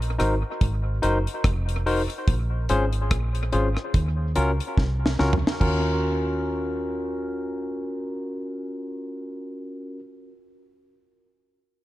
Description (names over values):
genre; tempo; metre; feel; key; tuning
lovers rock reggae; 72 BPM; 4/4; swing 57% on 16ths; Eb dorian; A4 = 439 Hz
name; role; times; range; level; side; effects
deep dub fingered electric bass; bass; 0.0-10.0 s; F1 to Eb2; -25 LUFS; equal; none
deep reggae drum kit; drums; 0.0-5.8 s; crash cymbal, hi-hat, kick drum, rim click, snare drum, toms; -25 LUFS; equal; dub echo
barky tine electric piano; accompaniment; 0.2-10.0 s; Db4 to C5; -27 LUFS; left 1 dB; overdrive, dub echo
room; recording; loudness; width
light reverb; dark, warm production; -22 LUFS; side -16 dB against mid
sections
0.0-5.6 A section; 5.6-8.9 B section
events
drum fill 4.8-5.6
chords
0.0 Ab7; 2.3 Bbm9; 3.9 Ebm9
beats
0.61 1.45 | 2.28 3.11 3.94 4.78 | 5.61 6.44 7.27 8.11